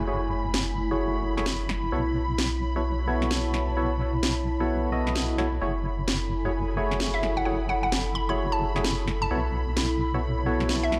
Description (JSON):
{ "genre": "UK garage, two-step garage", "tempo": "130 BPM", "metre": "4/4", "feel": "swing 62% on 16ths", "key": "F# minor", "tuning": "A4 = 441 Hz", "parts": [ { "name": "muted studio violin section", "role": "sustained chords", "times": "0.0-11.0 s", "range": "B5", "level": "-39 LUFS", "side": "equal", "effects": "low-pass filter" }, { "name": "percussive organ stab", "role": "stabs", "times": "0.0-11.0 s", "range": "A3 to D#5", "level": "-33 LUFS", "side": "equal", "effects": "subtle chorus, tape echo" }, { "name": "deep soft wobble bass", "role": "bass", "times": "0.0-11.0 s", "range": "F#1 to B1", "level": "-31 LUFS", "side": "equal", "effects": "chorus" }, { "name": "downlifter", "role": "sound effects", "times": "0.0-1.9 s", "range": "none", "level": "-52 LUFS", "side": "equal", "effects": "none" }, { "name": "airy breathy pad", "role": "texture", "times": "0.0-11.0 s", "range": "A3 to A5", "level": "-35 LUFS", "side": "equal", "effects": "chorus" }, { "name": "electronic snare drum", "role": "drums", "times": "0.5-11.0 s", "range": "none", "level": "-32 LUFS", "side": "equal", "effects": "none" }, { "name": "hollow square pluck", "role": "melody", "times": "7.1-10.9 s", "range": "E5 to B5", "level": "-32 LUFS", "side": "equal", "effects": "chorus, cassette tape, tape echo" } ], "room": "moderate plate reverb, RT60 1.6 s", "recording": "dreamy mix soaked in reverb", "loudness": "-27 LUFS", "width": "mono", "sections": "0.0-11.0 A section", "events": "filter sweep on synth stab 0.0-11.0", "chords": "0.0 F#m9; 1.9 B9sus4; 5.6 F#m9; 9.3 B9sus4" }